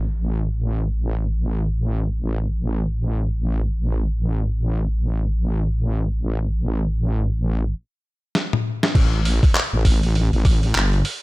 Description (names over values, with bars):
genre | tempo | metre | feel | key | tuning
glitch hop | 100 BPM | 4/4 | swing 60% on 16ths | unclear | A4 = 440 Hz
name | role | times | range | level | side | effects
wobble bass | bass | 0.0-11.0 s | G1 to A1 | -20 LUFS | equal | chorus
boom bap sampler-style drum kit | drums | 8.3-11.2 s | crash cymbal, handclaps, hi-hat, rim click, snare drum, toms | -23 LUFS | left 1 dB | low-pass filter on hats, studio reverb, low-pass filter on snare, low-pass filter on toms, low-pass filter on cymbals
electronic kick drum | drums | 8.9-10.6 s | none | -16 LUFS | equal | studio reverb
room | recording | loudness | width
little or no reverb | none | -19 LUFS | side -21 dB against mid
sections
0.0-8.9 A section; 8.9-11.2 B section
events
filter sweep on drum 0.0-8.9; stop 7.8-8.9; drum fill 8.3-8.9; drop 8.9-11.2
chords
none